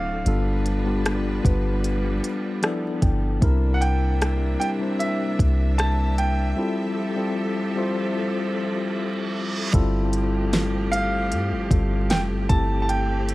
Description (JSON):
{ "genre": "contemporary R&B", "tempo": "76 BPM", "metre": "4/4", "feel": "straight", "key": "unclear", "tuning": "A4 = 441 Hz", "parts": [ { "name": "bright grand piano", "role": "melody", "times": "0.0-13.3 s", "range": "E5 to A5", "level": "-28 LUFS", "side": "right 2 dB", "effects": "analog delay" }, { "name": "mellow tine electric piano", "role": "accompaniment", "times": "0.0-13.3 s", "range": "F3 to G5", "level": "-25 LUFS", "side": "left 2 dB", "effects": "medium stereo tremolo, analog delay" }, { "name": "bright studio string section", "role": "sustained chords", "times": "0.0-13.3 s", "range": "C3 to E5", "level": "-33 LUFS", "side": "right 3 dB", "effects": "none" }, { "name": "soft 808-style bass", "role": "bass", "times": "0.0-13.3 s", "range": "D1 to G2", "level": "-23 LUFS", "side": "equal", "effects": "none" }, { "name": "smooth R&B drum kit", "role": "drums", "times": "0.3-13.3 s", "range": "hi-hat, kick drum, rim click, snare drum", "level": "-22 LUFS", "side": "equal", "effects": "none" }, { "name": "reverse cymbal", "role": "sound effects", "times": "8.7-9.7 s", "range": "none", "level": "-33 LUFS", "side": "right 4 dB", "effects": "none" } ], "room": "digital ambience", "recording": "echo-heavy mix, vinyl crackle", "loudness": "-20 LUFS", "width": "side -18 dB against mid", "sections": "0.0-9.7 A section; 9.7-13.3 B section", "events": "tine electric piano fill 2.2-3.4; break 6.6-9.7; reverse cymbal 8.7-9.7", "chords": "0.3 G7; 2.6 G13; 3.4 C9; 6.6 Fmaj9; 12.5 Am7/G", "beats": "| 0.26 1.05 1.84 2.63 | 3.42 4.21 5.00 5.79 | 6.58 7.37 8.16 8.95 | 9.74 10.53 11.32 12.11 | 12.89" }